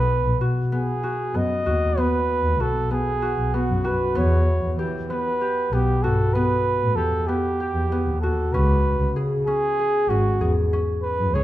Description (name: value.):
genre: contemporary instrumental, chamber music in an uneven meter.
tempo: 192 BPM (eighths).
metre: 7/8.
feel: straight.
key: unclear.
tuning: A4 = 440 Hz.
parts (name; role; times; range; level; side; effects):
mellow flugelhorn; melody; 0.0-11.4 s; F#4 to D#5; -24 LUFS; right 2 dB; none.
concert harp; arpeggios; 0.0-11.4 s; B3 to G#4; -27 LUFS; left 2 dB; none.
dark double bass; bass; 0.0-11.4 s; G#1 to E3; -23 LUFS; equal; none.
room: moderate recital hall reverb, RT60 1.9 s.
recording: minimal, uncompressed stereo recording.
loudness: -20 LUFS.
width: side -14 dB against mid.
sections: 0.0-11.4 A section.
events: none.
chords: 0.0 B5; 4.2 Em; 8.5 C#5.